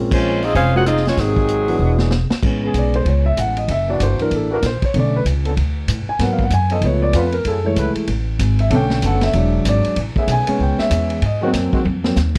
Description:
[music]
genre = jazz, big band swing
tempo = 191 BPM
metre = 4/4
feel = swing 62% on 8ths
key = A major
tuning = A4 = 439 Hz
[part]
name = warm concert grand piano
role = accompaniment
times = 0.0-12.2 s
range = D3 to G#5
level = -22 LUFS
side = equal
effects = none
[part]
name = upright bass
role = bass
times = 0.0-12.4 s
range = E1 to A2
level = -21 LUFS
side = equal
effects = none
[part]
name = bright saxophone section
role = melody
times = 0.1-2.3 s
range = Gb3 to Gb5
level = -22 LUFS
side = equal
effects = none
[part]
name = warm trombone section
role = second line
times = 0.1-2.3 s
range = C3 to Gb4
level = -26 LUFS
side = equal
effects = none
[part]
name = vintage drum kit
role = drums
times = 0.1-12.4 s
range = crash cymbal, hi-hat, kick drum, ride cymbal, rim click, snare drum, toms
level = -26 LUFS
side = equal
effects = none
[part]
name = warm trombone section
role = sustained chords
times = 2.6-11.8 s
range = C#3 to B4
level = -27 LUFS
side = equal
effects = none
[sound]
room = little or no reverb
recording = dry, close 1970s-style studio recording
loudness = -18 LUFS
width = mono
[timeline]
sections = 0.0-2.4 A section; 2.4-12.4 B section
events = band accent 0.1; drum fill 1.8-2.4, 11.8-12.2; grand piano solo 2.4-12.4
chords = 0.0 Bbm9; 1.2 Ab7; 1.8 E7; 2.4 Amaj9; 3.7 F#7alt; 4.9 Bm9; 6.2 G#m7; 6.8 C#7b13; 7.5 F#m9; 8.7 Bm7; 9.3 E7; 10.0 Amaj9; 11.2 G#7

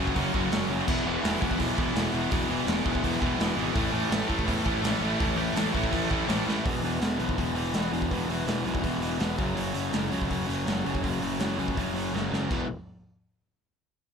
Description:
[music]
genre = punk rock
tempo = 165 BPM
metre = 4/4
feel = straight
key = E major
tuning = A4 = 440 Hz
[part]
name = cranked stack guitar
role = riff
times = 0.0-12.7 s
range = E2 to A3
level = -30 LUFS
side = left 14 dB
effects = overdrive
[part]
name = distorted electric guitar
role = riff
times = 0.0-12.7 s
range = E2 to A3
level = -31 LUFS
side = right 15 dB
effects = distortion
[part]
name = scooped high-gain guitar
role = riff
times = 0.0-6.6 s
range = A2 to F#4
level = -33 LUFS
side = right 1 dB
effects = distortion
[part]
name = fuzz picked electric bass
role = bass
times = 0.0-12.7 s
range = E1 to E2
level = -34 LUFS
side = equal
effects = overdrive
[part]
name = raw garage drum kit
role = drums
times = 0.1-12.6 s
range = crash cymbal, hi-hat, kick drum, snare drum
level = -31 LUFS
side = equal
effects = none
[sound]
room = little or no reverb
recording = none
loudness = -25 LUFS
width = side -6 dB against mid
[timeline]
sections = 0.0-6.6 A section; 6.6-12.5 B section; 12.5-14.0 C section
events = drum fill 6.5, 12.1-12.5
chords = 0.0 F#; 0.9 E; 3.8 A; 6.6 E5; 9.4 F#5; 12.5 E5

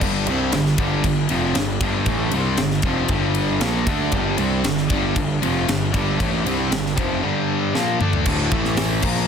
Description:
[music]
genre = heavy metal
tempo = 116 BPM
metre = 4/4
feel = straight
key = unclear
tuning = A4 = 440 Hz
[part]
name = pipe organ, cornet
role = sustained chords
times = 0.0-9.3 s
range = G3 to Bb5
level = -34 LUFS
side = right 1 dB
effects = none
[part]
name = fuzz guitar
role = riff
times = 0.0-9.3 s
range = D2 to D4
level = -26 LUFS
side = equal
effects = distortion
[part]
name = sludgy distorted guitar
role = riff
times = 0.0-9.3 s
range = D2 to D4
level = -25 LUFS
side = right 10 dB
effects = overdrive
[part]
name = tight distorted guitar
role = riff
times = 0.0-9.3 s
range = D2 to D4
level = -24 LUFS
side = left 11 dB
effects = distortion
[part]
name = fuzz picked electric bass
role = bass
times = 0.0-9.3 s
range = D1 to D2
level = -25 LUFS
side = equal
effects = overdrive
[part]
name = tight metal drum kit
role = drums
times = 0.0-9.2 s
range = crash cymbal, hi-hat, kick drum, ride cymbal, snare drum, toms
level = -24 LUFS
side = equal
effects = none
[sound]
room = light reverb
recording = dense, heavily limited modern master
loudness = -18 LUFS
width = side -7 dB against mid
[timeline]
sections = 0.0-8.3 A section; 8.3-9.3 B section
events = drum fill 7.7-8.3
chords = 0.0 G5; 8.3 Dm; 8.5 A5

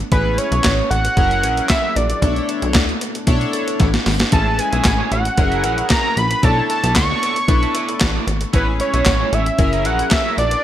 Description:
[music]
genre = early-eighties boogie funk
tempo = 114 BPM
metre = 4/4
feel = straight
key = unclear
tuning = A4 = 440 Hz
[part]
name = chorused pulse-width pad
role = sustained chords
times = 0.0-10.6 s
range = F#3 to A#4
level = -29 LUFS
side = equal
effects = none
[part]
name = plucky analog bass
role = bass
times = 0.0-10.6 s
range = F#1 to D2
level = -20 LUFS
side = equal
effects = none
[part]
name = fat analog lead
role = melody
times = 0.1-10.6 s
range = B4 to C#6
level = -20 LUFS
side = right 1 dB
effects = ping-pong delay
[part]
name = chorused polysynth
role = accompaniment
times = 0.1-10.2 s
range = C#4 to C#5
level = -24 LUFS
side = left 4 dB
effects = none
[part]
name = crisp 8-bit digital drum machine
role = drums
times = 0.1-10.6 s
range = handclaps, hi-hat, kick drum, snare drum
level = -18 LUFS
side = equal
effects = gated reverb
[part]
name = electric guitar at the edge of break-up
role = riff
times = 4.3-10.6 s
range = E4 to E5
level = -28 LUFS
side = right 9 dB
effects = lush chorus
[sound]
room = light reverb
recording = bright 1980s-style digital production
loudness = -15 LUFS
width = side -11 dB against mid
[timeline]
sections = 0.0-10.6 A section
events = drum fill 3.8-4.3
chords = 0.1 Amaj7; 1.2 F#7; 2.2 Bm11; 4.3 Amaj7; 5.4 F#7; 6.4 Bm11; 8.5 Amaj7; 9.6 F#7

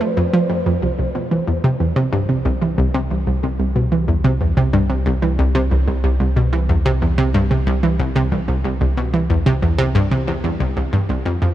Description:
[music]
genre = ambient, sequencer-driven space music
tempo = 92 BPM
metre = 4/4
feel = straight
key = C major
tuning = A4 = 441 Hz
[part]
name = expressive synth lead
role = melody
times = 0.0-0.5 s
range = C5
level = -28 LUFS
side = right 1 dB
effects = ensemble chorus, analog delay
[part]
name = analog pluck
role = riff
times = 0.0-11.5 s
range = C2 to A3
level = -17 LUFS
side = equal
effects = chorus, analog delay
[part]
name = round analog bass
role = bass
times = 0.0-11.5 s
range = C2 to F2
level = -22 LUFS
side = equal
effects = none
[sound]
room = moderate huge ambient reverb, RT60 7.7 s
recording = none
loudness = -16 LUFS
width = side -13 dB against mid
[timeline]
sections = 0.8-11.5 A section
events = none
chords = 0.0 F; 0.8 C

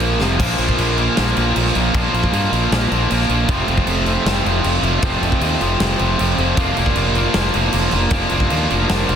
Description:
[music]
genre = hard rock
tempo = 156 BPM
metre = 4/4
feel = straight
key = unclear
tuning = A4 = 440 Hz
[part]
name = biting overdriven guitar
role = riff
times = 0.0-9.2 s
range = F2 to F4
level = -22 LUFS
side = equal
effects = none
[part]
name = high-gain distorted guitar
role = riff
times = 0.0-9.2 s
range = F2 to Bb3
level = -22 LUFS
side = right 10 dB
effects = distortion
[part]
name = scooped high-gain guitar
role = riff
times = 0.0-9.2 s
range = F2 to Bb3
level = -23 LUFS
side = left 13 dB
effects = distortion
[part]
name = fuzz fingered electric bass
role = bass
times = 0.0-9.2 s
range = F1 to G2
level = -20 LUFS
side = equal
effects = overdrive
[part]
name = huge arena drum kit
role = drums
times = 0.0-9.2 s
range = crash cymbal, kick drum, snare drum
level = -22 LUFS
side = equal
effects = none
[sound]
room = small room ambience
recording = dense, heavily limited modern master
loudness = -15 LUFS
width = side -8 dB against mid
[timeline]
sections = 0.4-9.2 A section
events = drum fill 0.2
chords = 0.2 F5; 0.4 Bb; 3.5 F; 6.6 Bb/F

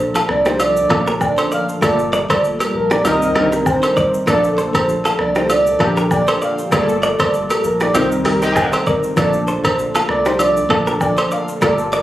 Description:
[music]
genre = afrobeats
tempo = 98 BPM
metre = 4/4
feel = swing 55% on 16ths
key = Bb major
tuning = A4 = 441 Hz
[part]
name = warm analog keys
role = accompaniment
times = 0.0-12.0 s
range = F3 to Bb4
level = -20 LUFS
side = left 1 dB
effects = chorus, tremolo
[part]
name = warm sub bass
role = bass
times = 0.0-12.0 s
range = G1 to C2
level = -27 LUFS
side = left 1 dB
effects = none
[part]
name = direct-recorded clean electric guitar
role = riff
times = 0.2-12.0 s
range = C4 to D5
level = -21 LUFS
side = right 1 dB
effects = tremolo, ping-pong delay
[part]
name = afro-pop drum kit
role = drums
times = 0.2-12.0 s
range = hi-hat, kick drum, rim click, shaker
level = -24 LUFS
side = equal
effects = none
[part]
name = agogo bells and woodblock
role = percussion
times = 0.2-11.8 s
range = none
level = -23 LUFS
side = equal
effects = none
[part]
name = breathy flute-like synth lead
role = melody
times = 0.3-11.8 s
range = Bb4 to F5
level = -19 LUFS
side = right 1 dB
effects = chorus, ping-pong delay
[part]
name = mellow horn section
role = second line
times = 7.9-8.7 s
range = C4 to G4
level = -21 LUFS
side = equal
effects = none
[sound]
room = light reverb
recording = recorded on a phone in the room, studio reverb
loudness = -14 LUFS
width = side -14 dB against mid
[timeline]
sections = 0.0-12.0 A section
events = band accent 6.7-9.2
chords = 0.0 Bbmaj7; 1.8 Gm9; 3.0 Cm7; 4.3 Bbmaj7; 6.7 Gm9; 7.9 Cm7; 9.2 Bbmaj7

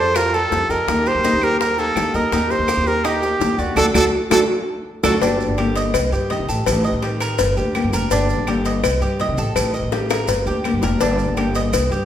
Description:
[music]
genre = latin, Cuban son and guajira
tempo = 166 BPM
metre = 4/4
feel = straight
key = G minor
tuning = A4 = 440 Hz
[part]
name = clear trumpet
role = melody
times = 0.0-5.1 s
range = F#4 to C5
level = -19 LUFS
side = right 1 dB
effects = none
[part]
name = nylon-string guitar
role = second line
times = 0.0-5.2 s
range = D4 to A4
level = -26 LUFS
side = right 3 dB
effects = none
[part]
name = nylon-string guitar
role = accompaniment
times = 0.0-12.1 s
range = C3 to G4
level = -24 LUFS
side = left 3 dB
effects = none
[part]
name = Cuban tres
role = arpeggios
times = 0.0-12.1 s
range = Bb3 to Eb5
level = -24 LUFS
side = right 3 dB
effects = none
[part]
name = upright bass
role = bass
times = 0.0-12.1 s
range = F1 to C3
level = -23 LUFS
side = right 1 dB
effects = none
[part]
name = claves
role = percussion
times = 0.1-11.9 s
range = none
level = -32 LUFS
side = right 4 dB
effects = none
[part]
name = bongos and cowbell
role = percussion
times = 0.2-11.9 s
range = none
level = -24 LUFS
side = left 5 dB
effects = none
[part]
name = maracas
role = percussion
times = 0.2-12.1 s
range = none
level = -31 LUFS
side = right 4 dB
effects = none
[sound]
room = wet recital hall reverb, RT60 1.5 s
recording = recorded in a church or concert hall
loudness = -16 LUFS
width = side -10 dB against mid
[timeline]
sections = 0.0-5.2 A section; 5.2-12.1 B section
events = band accent 3.8-5.2; drum fill 9.9-11.0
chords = 0.0 Fadd9; 0.9 Eb; 2.3 Cm7/Eb; 3.8 D; 5.2 Gm; 5.9 Cm; 6.7 Am7b5; 7.4 Gm; 8.8 Cm; 9.6 Am7b5; 10.3 Gm

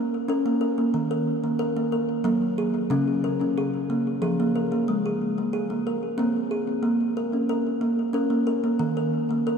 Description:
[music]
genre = world meditative, meditative tuned percussion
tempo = 92 BPM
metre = 3/4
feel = straight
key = Bb minor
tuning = A4 = 440 Hz
[part]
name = kalimba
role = solo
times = 0.0-9.6 s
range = Db3 to Bb4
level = -22 LUFS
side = equal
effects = ping-pong delay
[sound]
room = wet cathedral reverb, RT60 6.2 s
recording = in a vast, echoing space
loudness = -22 LUFS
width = side -6 dB against mid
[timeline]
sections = 0.0-9.6 A section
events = none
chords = 0.0 Bbm; 1.0 Ebm; 2.9 Db; 4.9 Ab; 6.8 Bbm; 8.8 Eb5

